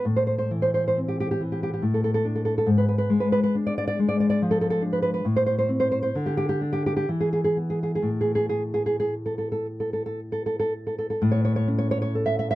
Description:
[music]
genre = romantic piece for solo classical guitar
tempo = 56-72 BPM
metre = 3/4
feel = rubato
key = A minor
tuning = A4 = 441 Hz
[part]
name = nylon-string guitar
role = solo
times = 0.0-12.6 s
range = G#2 to E5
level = -22 LUFS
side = equal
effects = none
[sound]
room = little or no reverb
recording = dry, close 1970s-style studio recording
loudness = -22 LUFS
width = side -16 dB against mid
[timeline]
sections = 0.0-11.2 A section; 11.2-12.6 B section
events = none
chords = 0.0 Am; 1.8 Asus4; 2.7 G#dim7; 5.2 Am; 6.1 N.C.; 7.1 E5; 8.1 N.C.; 11.2 A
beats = | 0.04 0.96 1.83 | 2.68 3.55 4.40 | 5.25 6.13 7.07 | 8.08 9.14 10.19 | 11.21 12.15

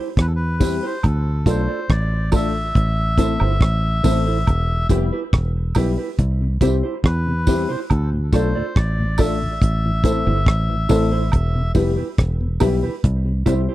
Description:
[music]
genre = roots reggae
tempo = 70 BPM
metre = 4/4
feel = straight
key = A minor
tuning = A4 = 440 Hz
[part]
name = mellow electric guitar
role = accompaniment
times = 0.0-13.7 s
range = E4 to D5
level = -27 LUFS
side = right 7 dB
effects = tape echo
[part]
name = melodica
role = melody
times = 0.2-11.7 s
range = A4 to E5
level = -26 LUFS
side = left 1 dB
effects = tape echo
[part]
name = fingered electric bass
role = bass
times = 0.2-13.7 s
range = E1 to E2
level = -20 LUFS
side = equal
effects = none
[part]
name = damped 70s drum kit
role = drums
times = 0.2-13.7 s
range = hi-hat, kick drum, rim click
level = -17 LUFS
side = equal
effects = none
[part]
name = dark grand piano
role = stabs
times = 0.6-13.6 s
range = G3 to A4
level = -23 LUFS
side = left 6 dB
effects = none
[part]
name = tambourine and woodblock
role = percussion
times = 0.6-13.7 s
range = none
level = -31 LUFS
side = right 6 dB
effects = none
[part]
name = mellow tonewheel organ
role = accompaniment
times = 6.4-13.5 s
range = D2 to F4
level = -26 LUFS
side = left 2 dB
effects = overdrive, chorus vibrato, slow rotary speaker
[sound]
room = little or no reverb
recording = dry, close 1970s-style studio recording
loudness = -17 LUFS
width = side -15 dB against mid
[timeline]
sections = 0.0-13.7 A section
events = none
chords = 0.0 C; 1.0 Dm; 2.8 Am; 4.5 Em; 6.2 C; 7.9 Dm; 9.6 Am; 11.3 Em; 13.0 C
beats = 0.18 1.04 1.90 | 2.75 3.61 4.47 5.33 | 6.19 7.04 7.90 8.76 | 9.62 10.47 11.33 12.19 | 13.04

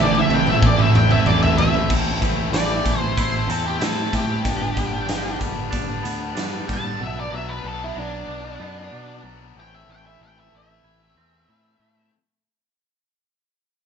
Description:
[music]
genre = quiet-loud alternative rock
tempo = 94 BPM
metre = 4/4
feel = straight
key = A dorian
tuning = A4 = 440 Hz
[part]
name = octave-fuzz lead guitar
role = melody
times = 0.0-12.1 s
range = D4 to A5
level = -25 LUFS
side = equal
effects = distortion
[part]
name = thick fuzz guitar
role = riff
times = 0.0-1.9 s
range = A2 to E4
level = -24 LUFS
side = right 9 dB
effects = distortion
[part]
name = tight distorted guitar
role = riff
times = 0.0-12.1 s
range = G2 to E4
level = -27 LUFS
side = left 8 dB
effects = distortion
[part]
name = growling fingered electric bass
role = bass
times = 0.0-12.1 s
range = G1 to B2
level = -28 LUFS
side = equal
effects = overdrive
[part]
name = big rock drum kit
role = drums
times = 0.2-6.8 s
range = crash cymbal, hi-hat, kick drum, snare drum, toms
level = -21 LUFS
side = right 1 dB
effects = none
[part]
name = twangy electric guitar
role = arpeggios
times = 1.9-12.1 s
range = G2 to E4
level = -33 LUFS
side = right 8 dB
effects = none
[sound]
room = light reverb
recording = band playing live in one room, nothing above 8.0 kHz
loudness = -18 LUFS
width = side -7 dB against mid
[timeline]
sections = 0.0-1.9 A section; 1.9-12.1 B section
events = drum fill 0.0-1.9; lead electric guitar solo 0.0-1.9, 1.9-12.1; fade-out 1.9-12.1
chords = 0.0 Am; 4.4 G; 7.0 Bm; 9.6 Am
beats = 0.62 1.25 | 1.89 2.53 3.17 3.81 | 4.45 5.09 5.73 6.37 | 7.01 7.65 8.29 8.93 | 9.57 10.21 10.85 11.49

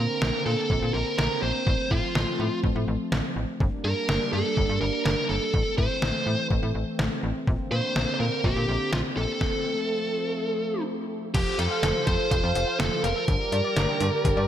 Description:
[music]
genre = synth-pop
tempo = 124 BPM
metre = 4/4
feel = straight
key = unclear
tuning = A4 = 439 Hz
[part]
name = biting lead guitar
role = melody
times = 0.0-14.5 s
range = F4 to C5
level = -27 LUFS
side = equal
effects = overdrive, ping-pong delay
[part]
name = warm analog pad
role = sustained chords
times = 0.0-14.5 s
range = D3 to D5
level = -31 LUFS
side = right 1 dB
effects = chorus
[part]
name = slap-like FM bass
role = bass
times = 0.0-14.5 s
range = F1 to Bb2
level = -28 LUFS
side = equal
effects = none
[part]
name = detuned 8-bit digital drum machine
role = drums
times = 0.2-14.4 s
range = crash cymbal, hi-hat, kick drum, snare drum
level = -28 LUFS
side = equal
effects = overdrive, gated reverb
[part]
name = analog pluck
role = arpeggios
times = 11.3-14.5 s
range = D3 to F5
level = -32 LUFS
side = left 2 dB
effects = chorus, ping-pong delay
[sound]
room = moderate lush hall reverb, RT60 2.4 s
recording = bright 1980s-style digital production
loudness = -23 LUFS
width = side -10 dB against mid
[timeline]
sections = 0.0-11.3 A section; 11.3-14.5 B section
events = stop 9.4-11.3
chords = 0.0 Bbadd9; 1.7 F/A; 3.6 Gm; 5.5 Am; 7.5 Bbadd9; 9.4 F; 13.3 Gm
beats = 0.22 0.70 1.18 | 1.67 2.15 2.64 3.12 | 3.60 4.09 4.57 5.05 | 5.54 6.02 6.51 6.99 | 7.47 7.96 8.44 8.93 | 9.41 9.89 10.38 10.86 | 11.35 11.83 12.31 12.80 | 13.28 13.77 14.25

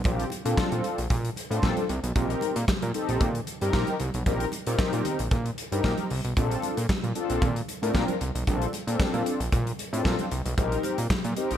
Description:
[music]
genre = early-eighties boogie funk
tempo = 114 BPM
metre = 4/4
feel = straight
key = Bb major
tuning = A4 = 440 Hz
[part]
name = mellow synth brass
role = accompaniment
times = 0.0-11.6 s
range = C4 to Bb4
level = -30 LUFS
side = left 2 dB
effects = chorus
[part]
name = fat analog bass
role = bass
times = 0.0-11.6 s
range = Bb1 to Bb2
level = -28 LUFS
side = equal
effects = none
[part]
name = congas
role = percussion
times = 0.0-11.2 s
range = none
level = -38 LUFS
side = right 4 dB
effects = none
[part]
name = modern studio drum kit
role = drums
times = 0.1-11.6 s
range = handclaps, hi-hat, kick drum, snare drum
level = -28 LUFS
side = equal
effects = gated reverb
[sound]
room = small room ambience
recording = none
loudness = -24 LUFS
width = side -10 dB against mid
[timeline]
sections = 0.0-11.6 A section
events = none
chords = 0.0 Bbmaj9; 2.2 Eb6/Bb; 6.4 Bbmaj9; 10.6 Eb6/Bb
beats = | 0.05 0.58 1.10 1.63 | 2.16 2.68 3.21 3.74 | 4.26 4.79 5.32 5.84 | 6.37 6.89 7.42 7.95 | 8.47 9.00 9.53 10.05 | 10.58 11.11

